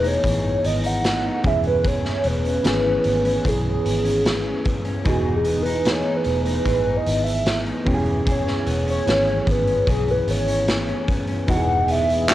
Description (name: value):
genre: indie pop, bedroom pop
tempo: 75 BPM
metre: 4/4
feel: straight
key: unclear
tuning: A4 = 440 Hz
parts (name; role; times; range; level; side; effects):
- warbly nostalgic lead; melody; 0.0-12.3 s; F#4 to F#5; -23 LUFS; equal; lush chorus, cassette tape, plate reverb
- electric guitar through a small old amp; accompaniment; 0.0-12.3 s; E3 to G#4; -30 LUFS; left 2 dB; wide subtle chorus, warbly pitch drift, cassette tape, plate reverb
- soft electric-piano-like synth keys; accompaniment; 0.0-12.3 s; E3 to G#4; -26 LUFS; right 1 dB; chorus, cassette tape, plate reverb
- vintage muted fingered electric bass; bass; 0.0-12.3 s; E1 to B1; -25 LUFS; equal; tube saturation
- raw garage drum kit; drums; 0.0-12.3 s; hi-hat, kick drum, snare drum; -24 LUFS; equal; cassette tape
- phased analog pad; sustained chords; 11.5-12.3 s; E3 to G#4; -29 LUFS; right 2 dB; phaser, chorus, cassette tape
- group handclap; percussion; 12.3 s; none; -15 LUFS; right 1 dB; none
room: moderate studio ambience, RT60 0.5 s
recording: home recording on cassette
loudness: -18 LUFS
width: side -14 dB against mid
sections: 0.0-12.3 A section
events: soft synth lead solo 0.0-12.3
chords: 0.0 Emaj7; 1.4 C#m7/E; 5.1 Emaj7; 7.9 C#m7/E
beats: 0.24 1.05 | 1.85 2.65 3.45 4.25 | 5.06 5.86 6.66 7.47 | 8.27 9.07 9.88 10.68 | 11.48 12.29